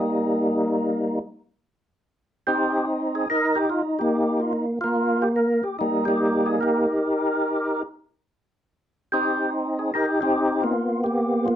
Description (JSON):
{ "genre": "jazz", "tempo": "144 BPM", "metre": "4/4", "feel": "swing 66% on 8ths", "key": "unclear", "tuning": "A4 = 443 Hz", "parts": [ { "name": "percussive tonewheel organ", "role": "solo", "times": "0.0-11.6 s", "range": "G3 to Bb4", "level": "-21 LUFS", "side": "equal", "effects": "slow rotary speaker, overdrive, chorus vibrato" } ], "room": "moderate club reverb, RT60 0.5 s", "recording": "none", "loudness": "-21 LUFS", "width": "side -10 dB against mid", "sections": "0.0-11.6 A section", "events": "none", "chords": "0.0 Abmaj7sus2/G (rootless); 2.5 Bb13sus4; 4.1 F9sus4; 9.1 Bb13sus4; 10.8 G7#9", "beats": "0.39 | 0.81 1.22 1.64 2.05 | 2.47 2.88 3.30 3.71 | 4.13 4.54 4.96 5.37 | 5.79 6.20 6.62 7.03 | 7.45 7.86 8.28 8.70 | 9.11 9.53 9.94 10.36 | 10.77 11.19" }